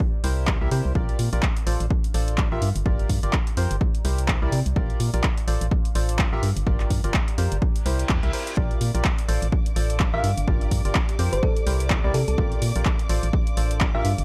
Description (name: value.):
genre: piano house.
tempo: 126 BPM.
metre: 4/4.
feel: swing 58% on 16ths.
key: D minor.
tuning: A4 = 440 Hz.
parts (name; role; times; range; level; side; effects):
electronic kick drum; drums; 0.0-13.9 s; none; -26 LUFS; equal; none.
warbly tape-like pad; texture; 0.0-14.2 s; C4 to C6; -43 LUFS; equal; none.
percussive organ stab; riff; 0.2-14.1 s; E4 to E5; -34 LUFS; equal; analog chorus, sidechain pumping.
organ-like FM bass; bass; 0.2-14.2 s; G1 to C3; -26 LUFS; equal; sidechain pumping.
punchy analog drum machine; drums; 0.2-14.2 s; handclaps, hi-hat; -32 LUFS; equal; overdrive.
reverse cymbal; sound effects; 7.8-8.6 s; none; -39 LUFS; equal; none.
dark chamber string section; sustained chords; 8.6-14.2 s; D5 to D6; -41 LUFS; equal; sidechain pumping.
thumb-piano-like synth pluck; melody; 10.1-14.1 s; A4 to F5; -32 LUFS; equal; chorus, analog delay.
room: little or no reverb.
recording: dry, gritty hardware recording.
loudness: -23 LUFS.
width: mono.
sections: 0.0-14.2 A section.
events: reverse cymbal 7.8-8.6.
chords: 0.0 C7; 1.0 Bb6; 1.7 Dm7/A; 2.6 Gm7; 3.8 C7; 4.8 Bb6; 5.5 Dm7/A; 6.4 Gm7; 7.6 C7; 8.6 Bb6; 9.3 Dm7/A; 10.2 Gm7; 11.4 C7; 12.4 Bb6; 13.1 Dm7/A.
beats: 0.00 0.48 | 0.95 1.43 1.91 2.38 | 2.86 3.33 3.81 4.29 | 4.76 5.24 5.71 6.19 | 6.67 7.14 7.62 8.10 | 8.57 9.05 9.52 10.00 | 10.48 10.95 11.43 11.90 | 12.38 12.86 13.33 13.81.